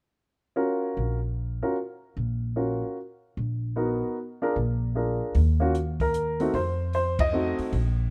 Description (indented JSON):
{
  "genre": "jazz piano trio",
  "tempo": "151 BPM",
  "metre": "3/4",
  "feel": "swing 64% on 8ths",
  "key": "unclear",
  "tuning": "A4 = 440 Hz",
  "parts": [
    { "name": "warm baby grand piano", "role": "melody", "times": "0.6-7.7 s", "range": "A3 to Eb5", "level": "-29 LUFS", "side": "equal", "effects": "none" },
    { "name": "upright bass", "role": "bass", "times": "1.0-8.1 s", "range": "Bb1 to F2", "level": "-29 LUFS", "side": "equal", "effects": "none" },
    { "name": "compact cocktail drum kit", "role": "drums", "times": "5.3-7.8 s", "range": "hi-hat, kick drum, ride cymbal", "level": "-33 LUFS", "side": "equal", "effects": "none" }
  ],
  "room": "light reverb",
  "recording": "none",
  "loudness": "-27 LUFS",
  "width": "mono",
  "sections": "0.6-5.3 A section; 5.3-8.1 B section",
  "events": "band accent 7.1",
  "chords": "0.6 Bbm; 5.3 Ebm; 6.5 F7b9",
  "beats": "| 0.57 0.97 1.37 | 1.77 2.17 2.56 | 2.96 3.36 3.76 | 4.16 4.55 4.95 | 5.35 5.74 6.14 | 6.54 6.93 7.33 | 7.72"
}